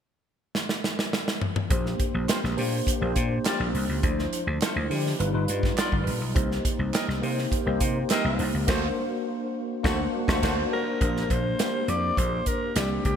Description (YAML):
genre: polished 1980s jazz-funk pop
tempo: 103 BPM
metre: 4/4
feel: straight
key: Bb major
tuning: A4 = 443 Hz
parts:
  - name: modern studio drum kit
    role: drums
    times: 0.5-13.2 s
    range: crash cymbal, hi-hat, kick drum, snare drum, toms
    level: -27 LUFS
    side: right 1 dB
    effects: gated reverb
  - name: tine electric piano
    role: accompaniment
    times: 1.7-13.2 s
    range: F3 to D5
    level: -28 LUFS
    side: left 1 dB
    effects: medium stereo tremolo, ensemble chorus
  - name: vintage slap bass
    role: bass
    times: 1.7-13.2 s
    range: G1 to D3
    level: -28 LUFS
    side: equal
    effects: none
  - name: dark horn section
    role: second line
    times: 2.3-10.6 s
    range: G3 to Eb5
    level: -34 LUFS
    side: equal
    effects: none
  - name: group handclap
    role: percussion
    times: 2.3-8.2 s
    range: none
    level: barely audible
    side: none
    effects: none
  - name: breathy alto saxophone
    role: melody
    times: 10.7-13.2 s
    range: G4 to D5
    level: -29 LUFS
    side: left 1 dB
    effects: none
room: moderate plate reverb, RT60 2.8 s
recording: bright 1980s-style digital production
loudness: -24 LUFS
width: side -8 dB against mid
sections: 0.0-1.7 A section; 1.7-11.0 B section; 11.0-13.2 C section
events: drum fill 0.5-1.7; band accent 8.7-11.0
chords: 0.0 N.C.; 1.7 Bb69; 4.0 Dm9; 5.2 G7b13; 6.4 Cm7; 8.7 D7b13; 11.0 Bb69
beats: 0.54 1.12 | 1.71 2.29 2.87 3.45 | 4.03 4.61 5.20 5.78 | 6.36 6.94 7.52 8.10 | 8.68 9.26 9.84 10.43 | 11.01 11.59 12.17 12.75